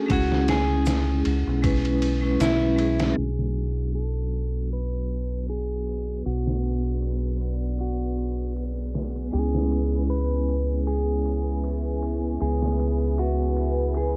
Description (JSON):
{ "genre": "trip hop", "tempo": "78 BPM", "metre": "4/4", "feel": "swing 55% on 16ths", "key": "B dorian", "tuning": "A4 = 440 Hz", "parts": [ { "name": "clean electric guitar", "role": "melody", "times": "0.0-14.2 s", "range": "E4 to B4", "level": "-33 LUFS", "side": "equal", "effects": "vintage 12-bit sampler grit, cassette tape, tape echo" }, { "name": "vibraphone with hard mallets", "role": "accompaniment", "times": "0.0-14.2 s", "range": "F#3 to B4", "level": "-31 LUFS", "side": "equal", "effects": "tremolo, cassette tape" }, { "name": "deep dub fingered electric bass", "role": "bass", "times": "0.1-14.2 s", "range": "B1 to C#2", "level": "-28 LUFS", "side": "equal", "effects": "none" }, { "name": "trip hop sampler-style drum kit", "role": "drums", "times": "0.1-14.1 s", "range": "kick drum, ride cymbal, snare drum", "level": "-32 LUFS", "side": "equal", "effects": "low-pass filter on cymbals, vintage 12-bit sampler grit, cassette tape, low-pass filter on snare, low-pass filter on kick" }, { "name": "tube shaker", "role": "percussion", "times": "0.9-2.6 s", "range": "none", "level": "-42 LUFS", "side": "equal", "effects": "none" }, { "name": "deep dark ambient pad", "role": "sustained chords", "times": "5.6-14.2 s", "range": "B4 to D6", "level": "-36 LUFS", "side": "equal", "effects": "chorus, built-in reverb, cassette tape" }, { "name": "backwards swelling texture", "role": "texture", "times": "5.2-14.2 s", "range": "B3 to B4", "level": "-39 LUFS", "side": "equal", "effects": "none" } ], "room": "light reverb", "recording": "home recording on cassette, vinyl crackle, low-pass filter", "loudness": "-25 LUFS", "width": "mono", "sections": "0.0-3.2 A section; 3.2-14.2 B section", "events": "filter sweep on ambient pad 3.2-14.2", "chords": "0.1 C#m; 3.2 Bm; 9.3 C#m7" }